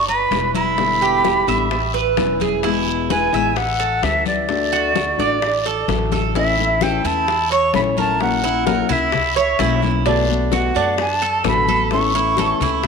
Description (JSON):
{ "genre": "latin, Cuban son and guajira", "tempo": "129 BPM", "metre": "4/4", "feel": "straight", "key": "unclear", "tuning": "A4 = 439 Hz", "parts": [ { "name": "jazz flute", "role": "melody", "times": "0.0-12.8 s", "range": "D5 to C#6", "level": "-20 LUFS", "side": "equal", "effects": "none" }, { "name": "Cuban tres", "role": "arpeggios", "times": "0.0-12.9 s", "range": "D4 to E5", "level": "-21 LUFS", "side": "right 7 dB", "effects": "tape echo" }, { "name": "upright bass", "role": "bass", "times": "0.0-12.9 s", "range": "E1 to F#2", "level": "-25 LUFS", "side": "equal", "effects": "none" }, { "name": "congas", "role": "percussion", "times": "0.1-12.9 s", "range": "none", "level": "-27 LUFS", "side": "left 12 dB", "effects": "none" }, { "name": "nylon-string guitar", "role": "accompaniment", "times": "0.3-12.9 s", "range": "B2 to F#4", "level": "-24 LUFS", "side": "left 10 dB", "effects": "none" }, { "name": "bongos", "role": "percussion", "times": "0.3-12.9 s", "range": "none", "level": "-29 LUFS", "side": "left 11 dB", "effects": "none" }, { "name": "guiro", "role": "percussion", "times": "0.3-12.9 s", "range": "none", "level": "-32 LUFS", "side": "left 14 dB", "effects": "none" } ], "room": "moderate echo chamber reverb, RT60 2.1 s", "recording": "1960s-style stereo with parts hard left and right", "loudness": "-16 LUFS", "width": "side -5 dB against mid", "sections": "0.0-6.4 A section; 6.4-12.9 B section", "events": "drum fill 6.1", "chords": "0.0 G6; 0.8 Em7; 1.7 Aadd9; 2.6 E; 3.6 A7; 4.5 D; 6.4 A; 8.2 F#7/A#; 10.1 Bm7; 11.9 A", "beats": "0.31 | 0.78 1.24 1.71 2.17 | 2.64 3.10 3.57 4.03 | 4.50 4.96 5.42 5.89 | 6.35 6.82 7.28 7.75 | 8.21 8.67 9.14 9.60 | 10.06 10.53 10.99 11.45 | 11.92 12.38 12.85" }